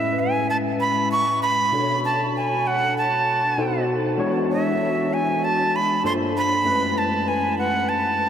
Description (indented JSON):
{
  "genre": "pop",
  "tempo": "98 BPM",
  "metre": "4/4",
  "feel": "straight",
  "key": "A major",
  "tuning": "A4 = 440 Hz",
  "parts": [
    { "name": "breathy bright jazz flute", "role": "melody", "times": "0.0-8.3 s", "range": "E5 to C#6", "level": "-21 LUFS", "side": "right 2 dB", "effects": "none" },
    { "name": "overdriven tine electric piano", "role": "accompaniment", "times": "0.0-8.3 s", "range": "F#2 to C#5", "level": "-23 LUFS", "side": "left 2 dB", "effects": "ensemble chorus" }
  ],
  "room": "wet huge ambient reverb, RT60 8.4 s",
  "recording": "dreamy mix soaked in reverb",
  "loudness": "-19 LUFS",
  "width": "side -9 dB against mid",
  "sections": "0.0-8.3 A section",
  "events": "none",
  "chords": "0.0 Amaj9; 1.7 Bm9; 3.6 B7b9; 4.2 E13; 6.0 Gm11; 6.6 F#m11"
}